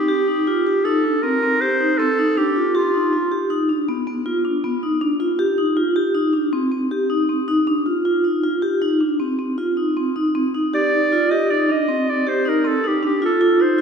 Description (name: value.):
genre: contemporary instrumental, contemporary.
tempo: 158 BPM.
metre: 7/4.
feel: straight.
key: C dorian.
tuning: A4 = 440 Hz.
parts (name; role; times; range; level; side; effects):
bright clarinet; melody; 0.0-3.5, 10.7-13.8 s; F4 to Eb5; -20 LUFS; right 1 dB; none.
vibraphone with medium mallets; arpeggios; 0.0-13.8 s; B3 to G4; -18 LUFS; equal; none.
room: wet church reverb, RT60 2.7 s.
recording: recorded in a church or concert hall.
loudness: -17 LUFS.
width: side -6 dB against mid.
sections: 0.1-13.8 A section.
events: none.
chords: 0.0 Cmadd9; 2.8 G7; 5.4 Cmadd9.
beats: | 0.09 0.47 0.85 1.24 1.62 2.00 2.38 | 2.75 3.13 3.51 3.89 4.26 4.64 5.02 | 5.40 5.78 6.15 6.53 6.91 7.29 7.67 | 8.05 8.43 8.82 9.20 9.58 9.97 10.35 | 10.74 11.12 11.50 11.88 12.27 12.65 13.03 | 13.41 13.79.